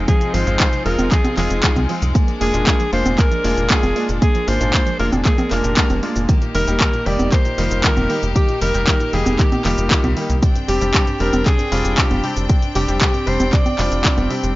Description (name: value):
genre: italo disco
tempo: 116 BPM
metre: 4/4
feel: straight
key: unclear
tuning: A4 = 440 Hz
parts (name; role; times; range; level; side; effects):
- bright chamber string section; sustained chords; 0.0-14.6 s; F3 to G5; -26 LUFS; left 1 dB; none
- warbly dusty pluck; arpeggios; 0.0-14.6 s; C2 to Bb3; -27 LUFS; right 4 dB; chorus, cassette tape, tape echo
- tight sequencer bass; bass; 0.0-14.5 s; F1 to C2; -21 LUFS; equal; tube saturation
- breathy alto saxophone; melody; 0.1-14.3 s; G4 to D5; -23 LUFS; equal; tape echo
- electronic kick drum; drums; 0.1-14.2 s; none; -16 LUFS; equal; overdrive
- house drum kit; drums; 0.1-14.5 s; cabasa, congas, handclaps, hi-hat; -21 LUFS; equal; overdrive
- bright baby grand piano; stabs; 0.3-14.5 s; G3 to G4; -25 LUFS; left 2 dB; none
room: little or no reverb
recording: dry, gritty hardware recording, nothing above 7.5 kHz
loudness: -15 LUFS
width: side -18 dB against mid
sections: 0.0-14.6 A section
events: none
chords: 0.0 Fm7; 2.1 Bb7/F; 6.3 Eb/F; 10.4 Csus2/F